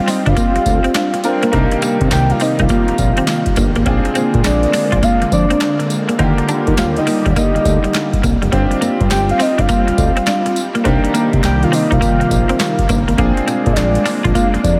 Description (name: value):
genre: R&B, new jack swing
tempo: 103 BPM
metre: 4/4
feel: swing 64% on 16ths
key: C minor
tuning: A4 = 440 Hz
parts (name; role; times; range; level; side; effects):
- soft octave-layered synth lead; melody; 0.0-14.8 s; D5 to G5; -22 LUFS; equal; chorus, phaser, analog delay
- clear baby grand piano; accompaniment; 0.0-14.8 s; D3 to Bb4; -24 LUFS; equal; analog chorus
- phased analog pad; sustained chords; 0.0-14.8 s; C3 to G4; -23 LUFS; equal; phaser, chorus
- electric guitar at the edge of break-up; riff; 0.1-14.6 s; G3 to F4; -23 LUFS; equal; subtle chorus
- booming analog drum machine; drums; 0.1-14.8 s; handclaps, hi-hat, kick drum, snare drum, tambourine; -22 LUFS; equal; none
- fat analog bass; bass; 0.3-14.8 s; F1 to Eb3; -20 LUFS; equal; none
- group handclap; percussion; 0.9-13.9 s; none; barely audible; none; none
room: moderate huge ambient reverb, RT60 8.5 s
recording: dreamy mix soaked in reverb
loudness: -15 LUFS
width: mono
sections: 0.0-14.8 A section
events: none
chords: 0.0 G7sus4; 1.5 Cm7; 3.9 Bb7; 6.2 Ebmaj7; 8.5 G7sus4; 10.9 Cm7; 13.2 Bb7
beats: 0.37 0.95 | 1.53 2.12 2.70 3.28 | 3.86 4.45 5.03 5.61 | 6.19 6.78 7.36 7.94 | 8.52 9.11 9.69 10.27 | 10.85 11.44 12.02 12.60 | 13.18 13.77 14.35